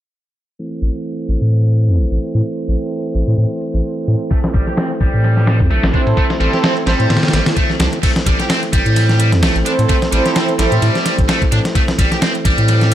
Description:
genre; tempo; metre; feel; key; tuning
breakbeat, breaks; 129 BPM; 4/4; swing 56% on 16ths; A minor; A4 = 441 Hz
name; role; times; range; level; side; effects
mellow tonewheel organ; sustained chords; 0.6-12.9 s; E3 to C4; -22 LUFS; right 1 dB; overdrive, chorus vibrato, slow rotary speaker, vintage 12-bit sampler grit, sidechain pumping, low-pass filter
electronic hi-hat; drums; 0.6-12.9 s; none; -29 LUFS; equal; overdrive
saturated sub bass; bass; 0.8-12.9 s; A1 to A2; -14 LUFS; equal; none
high-gain distorted guitar; riff; 4.3-12.9 s; G3 to G4; -20 LUFS; equal; distortion, tape echo
dusty soul sampler-style drum kit; drums; 4.3-12.9 s; crash cymbal, kick drum, ride cymbal, snare drum; -16 LUFS; equal; tape echo
muted studio string section; stabs; 5.9-10.7 s; C4 to C5; -20 LUFS; right 3 dB; tape echo
room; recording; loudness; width
digital ambience; echo-heavy mix, low-pass filter; -13 LUFS; side -12 dB against mid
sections
0.6-8.0 A section; 8.0-12.9 B section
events
filter sweep on sub bass 0.6-8.0; filter sweep on tonewheel organ 0.6-8.0; filter sweep 0.6-8.0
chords
0.6 Am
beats
| 0.59 1.05 1.52 1.99 | 2.45 2.92 3.38 3.85 | 4.31 4.78 5.24 5.71 | 6.17 6.64 7.10 7.57 | 8.03 8.50 8.96 9.43 | 9.89 10.36 10.82 11.29 | 11.75 12.22 12.68

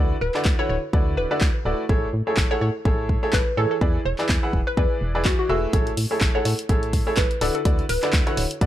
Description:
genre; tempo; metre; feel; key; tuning
piano house; 125 BPM; 4/4; swing 56% on 16ths; A major; A4 = 440 Hz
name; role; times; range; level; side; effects
bright baby grand piano; riff; 0.0-8.7 s; D3 to F#5; -26 LUFS; right 1 dB; sidechain pumping, analog delay
organ-like FM bass; bass; 0.0-8.7 s; D1 to A2; -26 LUFS; equal; sidechain pumping
hollow square pluck; melody; 0.2-8.5 s; F#4 to C#5; -27 LUFS; left 1 dB; analog chorus, analog delay
punchy analog drum machine; drums; 0.3-8.7 s; handclaps, hi-hat; -28 LUFS; equal; none
electronic kick drum; drums; 0.5-8.7 s; none; -22 LUFS; equal; none
room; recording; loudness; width
little or no reverb; dry, gritty hardware recording; -19 LUFS; side -12 dB against mid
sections
0.0-8.7 A section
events
none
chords
0.0 D69; 1.9 Amaj7; 3.8 E7; 5.7 Amaj7; 7.4 D69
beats
0.45 0.93 1.41 | 1.89 2.37 2.85 3.33 | 3.81 4.29 4.77 5.25 | 5.73 6.21 6.69 7.17 | 7.65 8.13 8.61

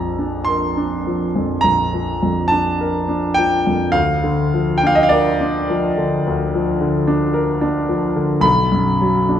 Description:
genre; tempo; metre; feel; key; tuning
classical, romantic nocturne for solo piano; 50-56 BPM; 4/4; rubato; Bb major; A4 = 444 Hz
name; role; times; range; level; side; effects
clear grand piano; solo; 0.0-9.4 s; Bb1 to C6; -15 LUFS; equal; none
room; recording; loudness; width
wet recital hall reverb, RT60 1.5 s; dark, warm production; -15 LUFS; side -10 dB against mid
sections
0.0-9.4 A section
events
none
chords
0.0 Bb; 4.0 Bb/D; 8.4 B5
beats
0.50 1.66 2.81 | 3.96 5.14 6.27 7.35 | 8.44

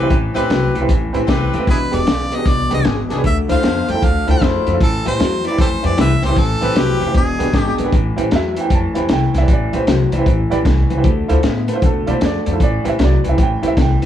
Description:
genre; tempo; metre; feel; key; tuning
electric blues shuffle; 154 BPM; 4/4; swing 64% on 8ths; A minor; A4 = 442 Hz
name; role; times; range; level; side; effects
warm upright piano; accompaniment; 0.0-14.1 s; C4 to A5; -22 LUFS; right 6 dB; none
electric guitar through a small old amp; riff; 0.0-14.1 s; E2 to B3; -21 LUFS; left 3 dB; none
clear saxophone section; stabs; 0.0-7.9 s; C4 to C5; -23 LUFS; left 5 dB; none
upright bass; bass; 0.0-14.1 s; E1 to B2; -19 LUFS; left 1 dB; none
crunchy breakbeat drum kit; drums; 0.1-14.1 s; hi-hat, kick drum, snare drum; -18 LUFS; equal; none
clear harmonica; melody; 1.7-7.8 s; E4 to G5; -22 LUFS; equal; none
room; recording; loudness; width
small room reverb; none; -14 LUFS; side -10 dB against mid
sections
0.0-7.9 A section; 7.9-14.1 B section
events
none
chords
0.0 Am9; 1.7 E7#9; 3.2 Dm9; 4.8 Am9; 7.1 E7#9; 7.9 Am9; 11.0 Dm9; 12.6 Am9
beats
| 0.11 0.50 0.90 1.29 | 1.68 2.07 2.46 2.85 | 3.24 3.63 4.02 4.41 | 4.80 5.19 5.58 5.97 | 6.37 6.76 7.15 7.54 | 7.93 8.32 8.71 9.10 | 9.49 9.88 10.27 10.65 | 11.04 11.43 11.82 12.21 | 12.60 12.99 13.38 13.77

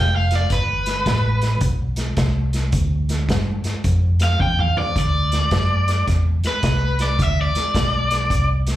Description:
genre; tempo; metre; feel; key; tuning
electric blues shuffle; 108 BPM; 4/4; swing 64% on 8ths; G mixolydian; A4 = 440 Hz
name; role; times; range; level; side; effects
overdriven electric guitar; melody; 0.0-8.5 s; B4 to G5; -22 LUFS; equal; slapback echo
vintage muted fingered electric bass; bass; 0.0-8.8 s; F1 to G2; -20 LUFS; equal; none
vintage drum kit; drums; 0.3-8.8 s; hi-hat, kick drum, snare drum, toms; -23 LUFS; equal; none
room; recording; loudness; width
little or no reverb; live gig heard through the venue's PA, club reverb; -17 LUFS; side -14 dB against mid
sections
0.0-8.8 A section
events
overdriven electric guitar solo 0.0-8.8; drum fill 4.4-5.0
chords
0.0 G9; 5.0 D9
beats
| 0.51 1.06 1.62 2.17 | 2.73 3.29 3.85 4.40 | 4.96 5.52 6.07 6.63 | 7.19 7.75 8.30

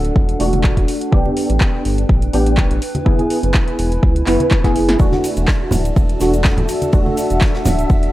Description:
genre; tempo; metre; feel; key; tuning
deep house; 124 BPM; 4/4; swing 54% on 16ths; E minor; A4 = 441 Hz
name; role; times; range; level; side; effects
percussive organ stab; stabs; 0.0-8.1 s; A3 to B4; -20 LUFS; equal; ensemble chorus, analog delay
round analog bass; bass; 0.0-8.1 s; D1 to C#2; -19 LUFS; equal; sidechain pumping
deep house drum kit; drums; 0.0-8.1 s; handclaps, hi-hat, snare drum; -24 LUFS; equal; overdrive
warbly tape-like pad; texture; 0.0-8.1 s; D4 to G#5; -26 LUFS; equal; chorus, built-in reverb, sidechain pumping
electronic kick drum; drums; 0.2-8.0 s; none; -15 LUFS; equal; overdrive
congas; percussion; 0.5-7.8 s; none; -21 LUFS; right 1 dB; none
dark analog pad; sustained chords; 5.0-8.1 s; F#4 to A5; -26 LUFS; left 1 dB; chorus, sidechain pumping
modern studio drum kit; drums; 5.0-8.0 s; ride cymbal, snare drum; -35 LUFS; equal; sidechain pumping on cymbals, high-pass filter on cymbals, high-pass filter on snare, high-pass filter on room
egg shaker; percussion; 5.0-8.0 s; none; -35 LUFS; left 2 dB; none
soft string machine; texture; 5.0-8.1 s; E5 to E6; -32 LUFS; equal; phaser, ensemble chorus, sidechain pumping
room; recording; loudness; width
small room ambience; dry, gritty hardware recording; -13 LUFS; side -16 dB against mid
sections
0.0-8.1 A section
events
drum fill 4.5-5.0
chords
0.0 E9sus4; 1.1 A9sus4; 2.8 F#9sus4; 5.0 E9sus4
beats
0.16 0.64 | 1.13 1.61 2.09 2.58 | 3.06 3.54 4.03 4.51 | 5.00 5.48 5.96 6.45 | 6.93 7.42 7.90

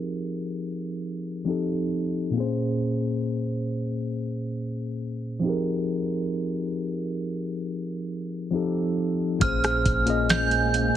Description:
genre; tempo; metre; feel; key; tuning
contemporary R&B; 68 BPM; 4/4; straight; F minor; A4 = 440 Hz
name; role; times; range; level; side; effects
tine electric piano; accompaniment; 0.0-11.0 s; Bb2 to Eb5; -26 LUFS; left 1 dB; auto-pan
synth chime; melody; 9.4-11.0 s; F6 to G6; -24 LUFS; right 3 dB; ensemble chorus
granular cloud pad; sustained chords; 10.0-11.0 s; Ab3 to Db4; -32 LUFS; right 4 dB; built-in reverb
clean 808-style bass; bass; 9.4-10.9 s; Bb1; -28 LUFS; right 1 dB; none
booming analog drum machine; drums; 9.4-10.9 s; hi-hat, kick drum, rim click, snare drum; -26 LUFS; right 1 dB; vintage 12-bit sampler grit
room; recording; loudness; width
digital ambience; heavily compressed radio sound, low-pass filter; -24 LUFS; side -11 dB against mid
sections
0.0-9.4 A section; 9.4-11.0 B section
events
filter sweep 0.0-9.4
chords
0.0 Fm11; 1.5 F7; 2.4 Bbm9; 5.4 Fm11; 8.5 F7; 9.4 Bbm9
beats
0.59 1.47 | 2.35 3.23 4.12 5.00 | 5.88 6.76 7.65 8.53 | 9.41 10.29

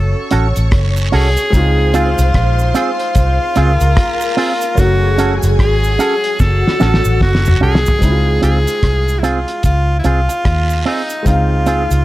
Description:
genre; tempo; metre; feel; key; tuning
lovers rock reggae; 74 BPM; 4/4; swing 60% on 16ths; Db major; A4 = 441 Hz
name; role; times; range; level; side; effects
edgy tenor saxophone; melody; 0.0-12.0 s; Eb4 to A4; -18 LUFS; equal; tape echo
string machine, full ensemble; second line; 0.0-8.0 s; Gb4 to Db6; -23 LUFS; left 1 dB; ensemble chorus
warm concert grand piano; accompaniment; 0.0-12.0 s; Gb3 to F5; -23 LUFS; left 1 dB; dub echo
vintage muted fingered electric bass; bass; 0.0-12.0 s; Gb1 to Eb2; -14 LUFS; equal; none
electric guitar with an envelope filter; stabs; 0.3-11.8 s; C4 to A4; -19 LUFS; right 4 dB; none
cloth-damped thuddy drum kit; drums; 0.3-12.0 s; hi-hat, kick drum, rim click, snare drum, toms; -16 LUFS; equal; none
cabasa and guiro; percussion; 0.3-12.0 s; none; -30 LUFS; right 6 dB; none
room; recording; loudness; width
light reverb, small room ambience; none; -11 LUFS; side -16 dB against mid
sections
0.0-8.0 A section; 8.0-12.0 B section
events
drum fill 6.4-8.0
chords
0.0 Gbm; 1.5 Dbmaj7; 4.8 Gbm; 8.0 Dbmaj7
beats
0.72 | 1.53 2.34 3.15 3.96 | 4.77 5.58 6.39 7.21 | 8.02 8.83 9.64 10.45 | 11.26

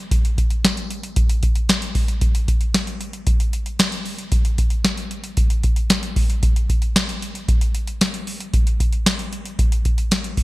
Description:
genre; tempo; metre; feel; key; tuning
funk; 114 BPM; 4/4; straight; none; none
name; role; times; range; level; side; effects
booming analog drum machine; drums; 0.1-10.4 s; hi-hat, kick drum, snare drum; -18 LUFS; equal; gated reverb
room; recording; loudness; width
light reverb; bright 1980s-style digital production; -18 LUFS; side -20 dB against mid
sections
0.0-10.4 A section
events
none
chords
none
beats
| 0.11 0.64 1.17 1.69 | 2.22 2.74 3.27 3.80 | 4.32 4.85 5.38 5.90 | 6.43 6.96 7.48 8.01 | 8.53 9.06 9.59 10.11

